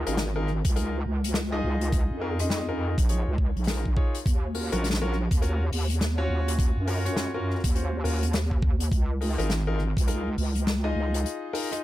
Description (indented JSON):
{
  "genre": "glitch hop",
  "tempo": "103 BPM",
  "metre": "4/4",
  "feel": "swing 62% on 16ths",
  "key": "unclear",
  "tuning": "A4 = 440 Hz",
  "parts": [
    { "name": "clear grand piano", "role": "stabs", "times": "0.0-11.8 s", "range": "Db4 to Eb5", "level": "-32 LUFS", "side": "left 2 dB", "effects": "sidechain pumping, ping-pong delay" },
    { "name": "wobble bass", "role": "bass", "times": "0.0-11.2 s", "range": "Ab1 to Gb2", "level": "-26 LUFS", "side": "equal", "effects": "chorus, overdrive" },
    { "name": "unplugged drum kit", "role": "drums", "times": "0.1-11.8 s", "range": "hi-hat, rim click, snare drum", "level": "-32 LUFS", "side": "left 2 dB", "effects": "none" },
    { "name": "electronic kick drum", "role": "drums", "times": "0.6-10.1 s", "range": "none", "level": "-24 LUFS", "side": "equal", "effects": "none" }
  ],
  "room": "little or no reverb",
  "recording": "none",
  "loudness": "-24 LUFS",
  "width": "side -15 dB against mid",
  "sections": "0.0-11.8 A section",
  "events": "break 11.2-11.8",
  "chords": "0.0 Db6; 4.3 Ebm7; 8.9 Db6"
}